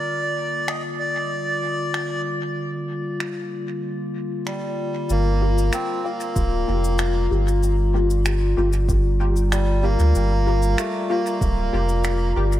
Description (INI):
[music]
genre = ambient dub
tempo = 95 BPM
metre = 4/4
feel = straight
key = G minor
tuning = A4 = 440 Hz
[part]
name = melodica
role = melody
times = 0.0-12.3 s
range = G3 to Eb5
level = -26 LUFS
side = right 2 dB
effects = dub echo
[part]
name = warbly tape-like pad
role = sustained chords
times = 0.0-12.6 s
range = D3 to Bb5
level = -26 LUFS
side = left 4 dB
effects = chorus, built-in reverb
[part]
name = finger snaps and cabasa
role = drums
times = 0.7-12.6 s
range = none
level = -32 LUFS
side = right 1 dB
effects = dub echo
[part]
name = warm sub bass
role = bass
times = 5.1-12.6 s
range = D1 to D2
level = -20 LUFS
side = equal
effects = none
[part]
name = filtered dub chord stab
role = stabs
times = 5.4-12.5 s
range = Bb3 to G4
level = -30 LUFS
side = left 2 dB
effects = ensemble chorus, dub echo
[part]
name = electronic kick drum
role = drums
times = 6.4-11.5 s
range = none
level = -22 LUFS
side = equal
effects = overdrive
[sound]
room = light reverb, small room ambience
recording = none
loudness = -20 LUFS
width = side -13 dB against mid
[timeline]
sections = 0.0-5.1 A section; 5.1-12.6 B section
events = none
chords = 0.0 Gm7